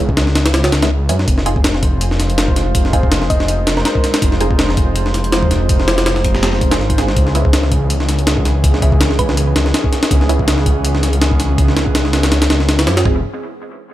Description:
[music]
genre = drum and bass, jungle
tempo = 163 BPM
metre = 4/4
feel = swing 55% on 16ths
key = F minor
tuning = A4 = 440 Hz
[part]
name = filtered dub chord stab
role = stabs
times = 0.0-13.2 s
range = Ab3 to Ab4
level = -24 LUFS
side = right 2 dB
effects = phaser, dub echo
[part]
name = detuned saw bass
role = bass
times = 0.0-13.2 s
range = F1 to Gb2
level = -16 LUFS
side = equal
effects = none
[part]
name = breakbeat sampler-style drum kit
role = drums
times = 0.1-13.1 s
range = hi-hat, kick drum, snare drum, toms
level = -15 LUFS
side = equal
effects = studio reverb
[part]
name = thumb-piano-like synth pluck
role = melody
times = 3.3-3.9, 9.2-9.4 s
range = Bb4 to Eb5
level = -25 LUFS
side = right 1 dB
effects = chorus, vintage 12-bit sampler grit, dub echo
[sound]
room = little or no reverb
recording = none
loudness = -12 LUFS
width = side -14 dB against mid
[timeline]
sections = 0.0-13.1 A section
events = drop 0.0-13.1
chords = 0.0 Dbm7; 1.3 Fm7; 7.2 Dbm7; 13.1 Fm7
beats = 0.17 0.54 0.91 | 1.28 1.64 2.01 2.38 | 2.75 3.12 3.48 3.85 | 4.22 4.59 4.96 5.33 | 5.69 6.06 6.43 6.80 | 7.17 7.53 7.90 8.27 | 8.64 9.01 9.37 9.74 | 10.11 10.48 10.85 11.21 | 11.58 11.95 12.32 12.69 | 13.05

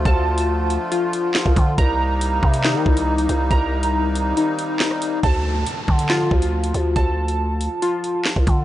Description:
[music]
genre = hip hop, drill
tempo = 139 BPM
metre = 4/4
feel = half-time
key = D phrygian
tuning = A4 = 441 Hz
[part]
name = accordion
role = sustained chords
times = 0.0-5.2 s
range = C3 to F4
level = -26 LUFS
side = equal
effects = light tremolo tuning
[part]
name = warbly lo-fi synth keys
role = arpeggios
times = 0.0-8.6 s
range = Eb4 to Bb5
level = -22 LUFS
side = left 1 dB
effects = chorus, tape echo
[part]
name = growling 808-style bass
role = bass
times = 0.0-8.6 s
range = C2 to Eb3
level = -21 LUFS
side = equal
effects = none
[part]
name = drill drum kit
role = drums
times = 0.1-8.6 s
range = handclaps, hi-hat, kick drum, rim click, snare drum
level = -20 LUFS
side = equal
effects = none
[part]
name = downlifter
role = sound effects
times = 5.2-8.6 s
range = none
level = -34 LUFS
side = equal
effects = none
[sound]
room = digital ambience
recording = dry, gritty hardware recording, nothing above 10.7 kHz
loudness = -17 LUFS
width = side -14 dB against mid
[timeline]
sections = 0.0-5.2 A section; 5.2-8.6 B section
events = kick muted 4.4-5.2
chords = 0.0 Dm; 1.8 Cm7; 5.2 Dm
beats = | 0.05 0.48 0.92 1.35 | 1.78 2.21 2.64 3.08 | 3.51 3.94 4.37 4.80 | 5.23 5.67 6.10 6.53 | 6.96 7.39 7.82 8.26

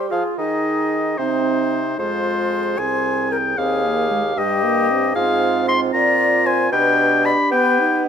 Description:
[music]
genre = quick classical-period movement for wind quintet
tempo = 76 BPM (dotted quarters)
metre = 6/8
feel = rubato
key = C minor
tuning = A4 = 442 Hz
[part]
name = mellow concert flute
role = melody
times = 0.0-8.0 s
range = Eb4 to Eb5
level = -23 LUFS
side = left 9 dB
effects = none
[part]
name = mellow clarinet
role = accompaniment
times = 0.0-8.1 s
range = C4 to Ab4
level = -26 LUFS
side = right 11 dB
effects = none
[part]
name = warm bassoon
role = bass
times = 0.0-8.1 s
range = C2 to B3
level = -25 LUFS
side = right 3 dB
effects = none
[part]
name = warm oboe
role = second line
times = 0.1-8.0 s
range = C5 to C6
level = -19 LUFS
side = left 1 dB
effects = none
[part]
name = dark French horn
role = accompaniment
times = 0.1-8.1 s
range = G3 to F4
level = -25 LUFS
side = right 2 dB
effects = none
[sound]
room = light reverb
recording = close, detailed microphones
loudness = -16 LUFS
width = side -8 dB against mid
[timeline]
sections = 0.0-8.1 A section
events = none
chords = 0.4 Ab/Eb; 2.0 Fm; 3.6 Cm/Eb; 5.2 Fm/Ab; 5.9 Bb; 6.7 G/B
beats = | 0.39 1.19 | 1.99 2.78 | 3.58 4.37 | 5.16 5.95 | 6.73 7.53

